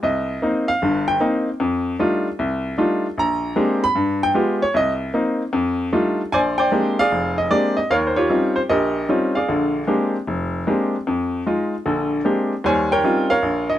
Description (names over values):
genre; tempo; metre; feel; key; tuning
solo jazz; 152 BPM; 4/4; swing 66% on 8ths; Bb mixolydian; A4 = 442 Hz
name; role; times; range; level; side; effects
bright upright piano; solo; 0.0-13.8 s; F1 to Cb6; -18 LUFS; equal; none
room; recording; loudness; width
small room ambience; dry, close 1970s-style studio recording; -18 LUFS; side -12 dB against mid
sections
0.0-6.3 A section; 6.3-13.8 B section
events
upright piano solo 0.0-6.3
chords
0.0 Cm7; 1.6 F13; 3.2 Bb13; 4.0 G7b9; 4.7 Cm7; 5.5 F13; 6.3 Bb13; 7.9 Eb13; 9.5 Bb13; 11.1 Fm7; 11.9 Bb13; 12.6 Eb13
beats
| 0.02 0.42 0.81 1.20 | 1.60 1.99 2.38 2.78 | 3.17 3.57 3.96 4.36 | 4.75 5.14 5.54 5.93 | 6.33 6.72 7.12 7.51 | 7.91 8.30 8.70 9.09 | 9.48 9.88 10.28 10.67 | 11.06 11.46 11.86 12.25 | 12.64 13.04 13.44